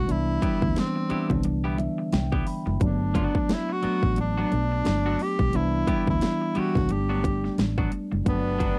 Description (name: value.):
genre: lush 1970s-style soul.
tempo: 88 BPM.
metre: 4/4.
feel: swing 58% on 16ths.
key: G major.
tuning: A4 = 440 Hz.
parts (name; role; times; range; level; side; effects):
breathy tenor saxophone; melody; 0.0-8.8 s; B3 to G4; -32 LUFS; equal; none.
mellow tine electric piano; accompaniment; 0.0-8.8 s; D3 to B5; -30 LUFS; equal; none.
vintage muted fingered electric bass; bass; 0.0-8.7 s; F#1 to D2; -30 LUFS; equal; none.
big-room dance drum kit; drums; 0.1-8.8 s; hi-hat, kick drum, snare drum; -30 LUFS; equal; overdrive.
clean electric guitar; riff; 0.4-8.8 s; F#3 to G4; -36 LUFS; equal; none.
congas; percussion; 0.4-8.8 s; none; -36 LUFS; equal; none.
clear horn section; stabs; 8.3-8.8 s; B2 to D4; -39 LUFS; equal; none.
room: little or no reverb.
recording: dry, close 1970s-style studio recording.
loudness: -25 LUFS.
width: mono.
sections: 0.0-8.3 A section.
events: tine electric piano fill 1.4-2.8.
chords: 0.1 Cmaj7; 2.8 Gmaj7; 5.5 Cmaj7; 6.9 Gmaj7.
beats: | 0.08 0.76 1.45 2.13 | 2.81 3.49 4.17 4.85 | 5.54 6.22 6.90 7.58 | 8.26.